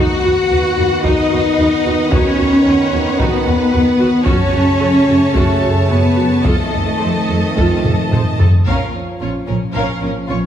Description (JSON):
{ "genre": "cinematic, epic orchestral film score", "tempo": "111 BPM", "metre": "4/4", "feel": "straight", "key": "unclear", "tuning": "A4 = 440 Hz", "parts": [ { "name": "warm symphonic violin section", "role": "melody", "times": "0.0-10.4 s", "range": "A4 to F#5", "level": "-25 LUFS", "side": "left 2 dB", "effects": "none" }, { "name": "clear symphonic violin section", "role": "second line", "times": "0.0-10.4 s", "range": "Db4 to A5", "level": "-24 LUFS", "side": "left 2 dB", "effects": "none" }, { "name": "warm symphonic viola section", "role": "accompaniment", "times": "0.0-10.4 s", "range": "C#4 to C5", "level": "-22 LUFS", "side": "right 2 dB", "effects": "none" }, { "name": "mellow French horn section", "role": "sustained chords", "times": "0.0-10.5 s", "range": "F3 to F#4", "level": "-20 LUFS", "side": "left 4 dB", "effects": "none" }, { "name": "mellow trombone section", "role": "sustained chords", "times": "0.0-8.4 s", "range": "C#3 to C4", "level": "-22 LUFS", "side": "right 3 dB", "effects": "none" }, { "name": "rich symphonic cello section", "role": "bass", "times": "0.0-10.4 s", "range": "Bb2 to F#4", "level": "-18 LUFS", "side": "right 1 dB", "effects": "none" }, { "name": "rich symphonic double bass section", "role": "bass", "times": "0.0-10.4 s", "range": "Bb1 to F#2", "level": "-20 LUFS", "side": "right 1 dB", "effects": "none" }, { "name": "solo taiko drums", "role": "drums", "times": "1.0-9.7 s", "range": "none", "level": "-18 LUFS", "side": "equal", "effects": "none" } ], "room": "wet scoring stage reverb, RT60 1.9 s", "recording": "heavily compressed radio sound, multiband compression, small room ambience", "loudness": "-12 LUFS", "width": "side -9 dB against mid", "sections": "0.0-8.7 A section; 8.7-10.5 B section", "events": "drum fill 7.8-8.7", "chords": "0.0 B/D#; 4.3 F#m; 6.5 F7; 8.7 Bbm" }